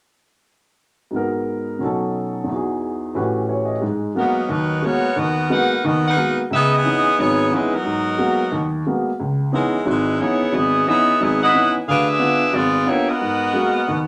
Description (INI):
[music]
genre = jazz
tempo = 179 BPM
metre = 4/4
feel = swing 64% on 8ths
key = G# minor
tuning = A4 = 440 Hz
[part]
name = warm upright piano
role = accompaniment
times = 1.1-14.1 s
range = G#1 to D#5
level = -22 LUFS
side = equal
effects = none
[part]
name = edgy saxophone section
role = melody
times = 4.2-14.1 s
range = F#3 to F#5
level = -21 LUFS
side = equal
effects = none
[sound]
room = wet club reverb, RT60 0.6 s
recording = none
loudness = -19 LUFS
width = mono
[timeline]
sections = 1.1-3.8 A section; 3.8-14.1 B section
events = none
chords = 1.1 G#m9; 1.8 B7; 2.5 Emaj7; 3.2 A13; 3.8 G#m9; 6.5 C#m9; 7.8 G#m9; 9.2 C#m9; 11.9 Ddim7; 13.2 G#m9